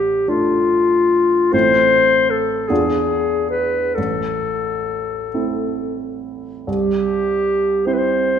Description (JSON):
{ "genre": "classical, romantic duo for clarinet and grand piano", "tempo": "43-53 BPM (dotted quarters)", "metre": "6/8", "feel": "rubato", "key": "A minor", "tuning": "A4 = 441 Hz", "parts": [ { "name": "clear clarinet", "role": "melody", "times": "0.0-8.4 s", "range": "F4 to C5", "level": "-16 LUFS", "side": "left 2 dB", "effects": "none" }, { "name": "warm baby grand piano", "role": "accompaniment", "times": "0.0-8.4 s", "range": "A1 to F4", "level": "-22 LUFS", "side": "right 4 dB", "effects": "none" } ], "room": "wet scoring stage reverb, RT60 1.6 s", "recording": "minimal, uncompressed stereo recording", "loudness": "-15 LUFS", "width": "side -8 dB against mid", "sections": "0.0-6.7 A section; 6.7-8.4 B section", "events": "none", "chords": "0.0 Dm/A; 1.5 Am; 2.7 E7b9; 4.0 Am; 6.7 C" }